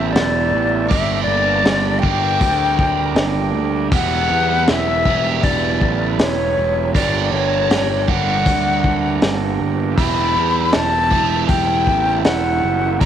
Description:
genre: psychedelic rock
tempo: 79 BPM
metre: 4/4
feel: straight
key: unclear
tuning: A4 = 440 Hz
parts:
  - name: mellow silver concert flute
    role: melody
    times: 0.0-13.1 s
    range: C#5 to B5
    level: -19 LUFS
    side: left 3 dB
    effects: tape echo
  - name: combo organ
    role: sustained chords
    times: 0.0-13.1 s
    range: G3 to E5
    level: -28 LUFS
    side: right 13 dB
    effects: none
  - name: biting overdriven guitar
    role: riff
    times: 0.0-13.1 s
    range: E3 to G4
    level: -22 LUFS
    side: right 13 dB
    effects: flanger
  - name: fuzz picked electric bass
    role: bass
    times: 0.0-13.1 s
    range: E1 to E2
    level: -22 LUFS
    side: left 1 dB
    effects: overdrive
  - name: crunchy breakbeat drum kit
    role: drums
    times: 0.2-13.1 s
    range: hi-hat, kick drum, snare drum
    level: -19 LUFS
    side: left 1 dB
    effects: none
room: light reverb, studio ambience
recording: 1960s-style stereo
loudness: -15 LUFS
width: side -9 dB against mid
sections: 0.0-13.1 A section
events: none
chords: 0.0 Em; 0.9 Gm; 3.9 Emadd9; 6.9 Gm; 10.0 Emadd9

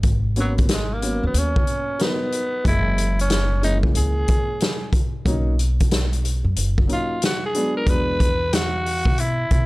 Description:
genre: hip hop, jazz-hop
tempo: 92 BPM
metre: 4/4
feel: swing 65% on 16ths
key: G# minor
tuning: A4 = 443 Hz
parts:
  - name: upright bass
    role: bass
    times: 0.0-9.7 s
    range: F#1 to B2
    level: -22 LUFS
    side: equal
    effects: none
  - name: vintage drum kit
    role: drums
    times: 0.0-9.7 s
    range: hi-hat, kick drum, snare drum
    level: -21 LUFS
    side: equal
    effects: none
  - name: growling tenor saxophone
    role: melody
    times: 0.4-9.7 s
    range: F#3 to B4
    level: -24 LUFS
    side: equal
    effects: none
  - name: warm upright piano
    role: accompaniment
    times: 0.4-8.3 s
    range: E3 to D#5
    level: -27 LUFS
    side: equal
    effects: none
room: small room ambience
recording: dry, gritty hardware recording, transformer saturation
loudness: -18 LUFS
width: side -20 dB against mid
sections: 0.0-9.7 A section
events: tenor saxophone solo 0.0-9.7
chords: 0.0 G#m11; 2.7 F#13; 5.3 Bmaj9; 7.9 E7

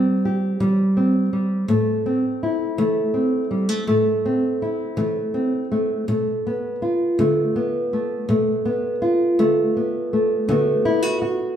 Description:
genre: folk, solo fingerstyle acoustic guitar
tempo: 55 BPM (dotted quarters)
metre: 6/8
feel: straight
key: unclear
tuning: A4 = 435 Hz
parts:
  - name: nylon-string guitar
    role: solo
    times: 0.0-11.6 s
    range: A2 to G4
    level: -18 LUFS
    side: equal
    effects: none
room: wet large studio reverb, RT60 1.2 s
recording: band playing live in one room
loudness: -18 LUFS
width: side -9 dB against mid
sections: 0.0-11.6 A section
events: none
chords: 0.0 C; 1.7 Am; 6.1 Bm7b5; 10.5 D6

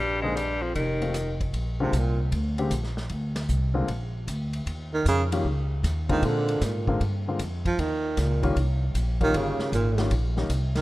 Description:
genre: jazz, small-group swing and bop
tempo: 154 BPM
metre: 4/4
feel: swing 66% on 8ths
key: Bb mixolydian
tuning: A4 = 440 Hz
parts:
  - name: bright tenor saxophone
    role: melody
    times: 0.0-1.4 s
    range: Eb3 to Ab3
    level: -29 LUFS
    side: left 2 dB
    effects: none
  - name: breathy baritone saxophone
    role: second line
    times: 0.0-2.2, 4.9-10.8 s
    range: Eb2 to F3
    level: -28 LUFS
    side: right 3 dB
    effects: none
  - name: upright bass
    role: bass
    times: 0.0-10.8 s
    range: F1 to Bb2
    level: -26 LUFS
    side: equal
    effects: none
  - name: warm grand piano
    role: accompaniment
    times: 0.2-10.5 s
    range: D3 to Ab4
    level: -30 LUFS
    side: left 3 dB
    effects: none
  - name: vintage drum kit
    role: drums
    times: 0.4-10.8 s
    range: hi-hat, kick drum, ride cymbal, rim click, snare drum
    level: -35 LUFS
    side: equal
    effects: none
room: light reverb, small room ambience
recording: rough home demo mix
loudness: -24 LUFS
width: side -18 dB against mid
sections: 0.0-1.5 A section; 1.5-10.8 B section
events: baritone saxophone solo 1.5-10.8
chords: 0.0 Bb9; 0.8 F7; 1.5 Bbadd9; 4.7 Eb7sus2; 6.2 Bb9; 7.8 Eb9

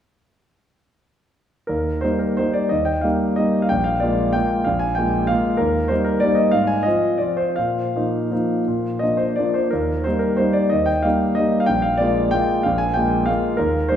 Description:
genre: classical, piano waltz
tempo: 151-204 BPM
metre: 3/4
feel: rubato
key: Eb major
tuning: A4 = 440 Hz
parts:
  - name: clear concert grand piano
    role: solo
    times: 1.7-14.0 s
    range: Bb1 to Ab5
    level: -17 LUFS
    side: equal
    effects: none
room: wet scoring stage reverb, RT60 1.9 s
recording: recorded in a church or concert hall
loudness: -17 LUFS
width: side -9 dB against mid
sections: 1.7-14.0 A section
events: none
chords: 1.7 Eb; 3.7 Bb7; 5.6 Eb; 6.5 Fm/Ab; 7.6 Bbsus4; 8.7 Bb; 9.7 Eb; 11.7 Bb7

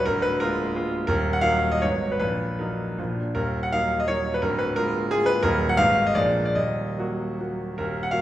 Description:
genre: classical, romantic triple-time dance for piano with dotted rhythms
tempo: 139-187 BPM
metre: 3/4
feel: rubato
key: Eb minor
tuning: A4 = 439 Hz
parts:
  - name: clear concert grand piano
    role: solo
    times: 0.0-8.2 s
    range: D1 to Gb5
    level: -21 LUFS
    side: equal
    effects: none
room: wet recital hall reverb, RT60 1.4 s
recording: recorded in a church or concert hall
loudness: -22 LUFS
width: side -13 dB against mid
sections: 0.0-7.8 A section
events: none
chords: 0.1 Bb7/D; 1.1 Ebm; 1.8 Abm7; 2.2 Ebm/Bb; 3.0 Bb; 3.4 Ebm; 4.4 Bb7/D; 5.4 Ebm; 5.8 Abm; 6.2 Bb7; 6.6 Ebm

